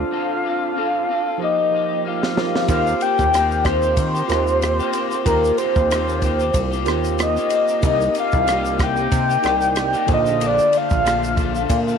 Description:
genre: indie pop, bedroom pop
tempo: 93 BPM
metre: 4/4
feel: swing 55% on 16ths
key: Eb lydian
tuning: A4 = 440 Hz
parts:
  - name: soft octave-layered synth lead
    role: melody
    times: 0.0-12.0 s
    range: Bb4 to G5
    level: -19 LUFS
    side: left 2 dB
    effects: lush chorus
  - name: electric guitar through a small old amp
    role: accompaniment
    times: 0.0-12.0 s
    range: Bb2 to A4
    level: -26 LUFS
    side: left 12 dB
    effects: analog chorus, warbly pitch drift
  - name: mellow tine electric piano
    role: accompaniment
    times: 0.0-12.0 s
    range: D3 to Eb5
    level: -26 LUFS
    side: right 12 dB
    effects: cassette tape
  - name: chorused synth bass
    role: bass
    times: 0.0-12.0 s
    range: Bb1 to Eb3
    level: -23 LUFS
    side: right 1 dB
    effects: none
  - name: compact cocktail drum kit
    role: drums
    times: 2.2-12.0 s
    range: kick drum, ride cymbal, rim click, shaker, snare drum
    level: -24 LUFS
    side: right 1 dB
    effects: none
room: light reverb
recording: 1960s-style stereo with parts hard left and right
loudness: -16 LUFS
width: side -7 dB against mid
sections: 0.0-2.7 A section; 2.7-12.0 B section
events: drum fill 1.4-2.7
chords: 0.0 Dm7; 1.4 F9sus4; 2.7 Eb6; 7.8 Cm7; 10.1 Bbmaj7

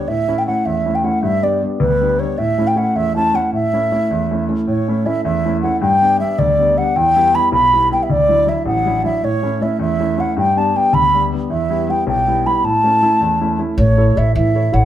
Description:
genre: celtic folk, Celtic jig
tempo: 105 BPM (dotted quarters)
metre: 6/8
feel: straight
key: A mixolydian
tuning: A4 = 440 Hz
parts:
  - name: mellow baroque flute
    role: melody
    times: 0.0-14.8 s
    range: B4 to B5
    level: -16 LUFS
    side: equal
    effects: plate reverb
  - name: warm concert grand piano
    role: accompaniment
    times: 0.0-14.8 s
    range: A1 to C#5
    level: -18 LUFS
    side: left 1 dB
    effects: none
  - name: upright bass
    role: bass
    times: 13.8-14.8 s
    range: A1 to A2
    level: -13 LUFS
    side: equal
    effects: none
room: wet small room reverb, RT60 0.5 s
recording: heard from further back in the room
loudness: -14 LUFS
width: side -11 dB against mid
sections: 0.0-4.7 A section; 4.7-13.8 B section; 13.8-14.8 B section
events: none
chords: 0.1 A; 1.2 G; 2.4 A; 5.8 G; 7.0 Em; 8.1 Dadd9; 9.2 A; 10.4 G; 11.5 Em; 12.6 A

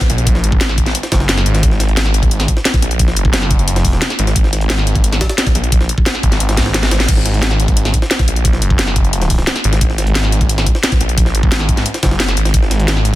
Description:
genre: dark technical drum and bass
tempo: 176 BPM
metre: 4/4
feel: straight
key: unclear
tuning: A4 = 440 Hz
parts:
  - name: drum and bass drum kit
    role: drums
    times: 0.0-13.1 s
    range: crash cymbal, hi-hat, snare drum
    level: -18 LUFS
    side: left 1 dB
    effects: soft clipping on snare
  - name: electronic kick drum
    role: drums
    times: 0.0-12.6 s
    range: none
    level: -15 LUFS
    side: equal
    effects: none
  - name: jungle sampler-style drum kit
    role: drums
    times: 0.0-13.1 s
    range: hi-hat, snare drum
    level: -24 LUFS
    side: equal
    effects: high-pass filter on hats, high-pass filter on snare
  - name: snarling distorted saw bass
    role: bass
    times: 0.1-13.2 s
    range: F#1 to A#1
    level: -15 LUFS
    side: equal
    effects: distortion, overdrive, sidechain pumping
room: digital ambience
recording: dense, heavily limited modern master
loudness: -12 LUFS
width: side -16 dB against mid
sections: 0.0-13.2 A section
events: drum fill 6.6-7.1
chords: none

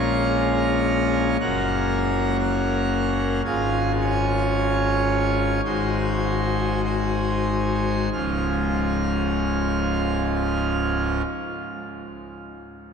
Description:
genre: classical, chorale-style piece for pipe organ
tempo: 46-65 BPM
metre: 4/4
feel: rubato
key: Db major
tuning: A4 = 440 Hz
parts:
  - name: pipe organ, full organ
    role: solo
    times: 0.0-11.2 s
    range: Db1 to F6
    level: -21 LUFS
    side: equal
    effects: none
room: wet cathedral reverb, RT60 5.9 s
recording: dark, warm production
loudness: -20 LUFS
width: side -6 dB against mid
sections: 0.0-8.1 A section; 8.1-12.9 B section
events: slowing down 0.0-8.1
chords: 0.0 Bbm7; 1.4 Gb; 3.5 Db/Ab; 5.6 Ab7; 8.1 Db

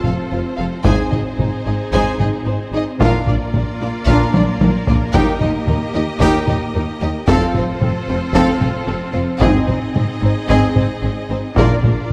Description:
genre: cinematic, epic orchestral film score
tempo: 112 BPM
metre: 4/4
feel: straight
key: unclear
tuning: A4 = 438 Hz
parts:
  - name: warm symphonic violin section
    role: melody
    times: 0.0-11.9 s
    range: Ab4 to Ab5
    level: -30 LUFS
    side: equal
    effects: none
  - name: rich symphonic violin section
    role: second line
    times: 0.0-11.9 s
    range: C4 to C5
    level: -31 LUFS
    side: equal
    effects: none
  - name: dark studio viola section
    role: accompaniment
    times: 0.0-11.9 s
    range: Bb3 to F4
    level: -26 LUFS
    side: equal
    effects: none
  - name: rich studio string section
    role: sustained chords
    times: 0.0-12.1 s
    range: Bb3 to Eb5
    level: -27 LUFS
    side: equal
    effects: none
  - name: rich studio double bass section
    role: bass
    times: 0.0-12.1 s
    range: F1 to Eb2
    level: -24 LUFS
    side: equal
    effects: none
  - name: rich symphonic cello section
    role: bass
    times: 0.0-12.1 s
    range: Eb2 to Bb2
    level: -26 LUFS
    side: equal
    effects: none
  - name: solo taiko drums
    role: drums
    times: 0.0-12.1 s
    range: none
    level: -21 LUFS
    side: equal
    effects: none
  - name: dark French horn section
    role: sustained chords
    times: 0.8-11.8 s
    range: Bb3 to F4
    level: -30 LUFS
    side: equal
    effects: none
  - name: clear trumpet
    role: stabs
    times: 0.8-11.8 s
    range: F4 to Bb4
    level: -28 LUFS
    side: equal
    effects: none
room: moderate concert hall reverb, RT60 2.0 s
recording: dark, warm production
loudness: -17 LUFS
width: mono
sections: 0.0-12.1 A section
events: drum fill 4.3-5.1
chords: 0.0 F; 0.9 Ab; 3.0 Bb; 5.1 Eb; 7.3 F; 9.4 Ab; 11.6 Bb

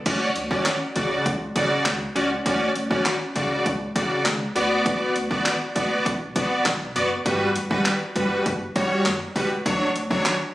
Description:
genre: dance-pop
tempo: 100 BPM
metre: 4/4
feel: straight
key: D major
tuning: A4 = 442 Hz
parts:
  - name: big bright polysynth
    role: accompaniment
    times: 0.1-10.4 s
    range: C#3 to D5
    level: -22 LUFS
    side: equal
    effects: chorus, sidechain pumping
  - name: upright bass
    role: bass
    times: 0.1-10.2 s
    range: F#1 to D2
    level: -33 LUFS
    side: equal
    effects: sidechain pumping
  - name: deep house drum kit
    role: drums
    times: 0.1-10.4 s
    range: crash cymbal, handclaps, hi-hat, kick drum, snare drum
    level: -26 LUFS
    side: equal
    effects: none
room: moderate plate reverb, RT60 2.1 s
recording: recorded on a phone in the room, studio reverb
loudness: -20 LUFS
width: side -16 dB against mid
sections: 0.1-10.5 A section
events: none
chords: 0.1 Dmaj7; 4.6 Bm/D; 7.3 Gmaj7; 9.7 Dmaj7

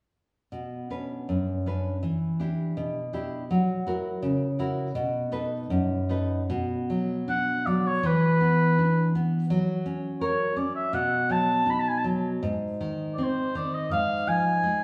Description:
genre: fado-style ballad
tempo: 76-86 BPM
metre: 2/4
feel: rubato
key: unclear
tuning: A4 = 440 Hz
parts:
  - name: nylon-string guitar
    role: accompaniment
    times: 0.5-14.8 s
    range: F#2 to B4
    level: -28 LUFS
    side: equal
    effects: none
  - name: warm oboe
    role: melody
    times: 7.3-14.8 s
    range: B4 to B5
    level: -28 LUFS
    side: equal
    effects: none
room: wet large studio reverb, RT60 1.4 s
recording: band playing live in one room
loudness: -27 LUFS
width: mono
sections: 0.5-6.5 A section; 6.5-14.8 B section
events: none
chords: 0.5 Bmadd9; 2.0 Em7; 3.5 F#7; 5.0 B7; 6.5 Bm; 8.0 E5; 9.5 F#; 10.9 B; 12.4 G#; 13.9 Fm/Ab

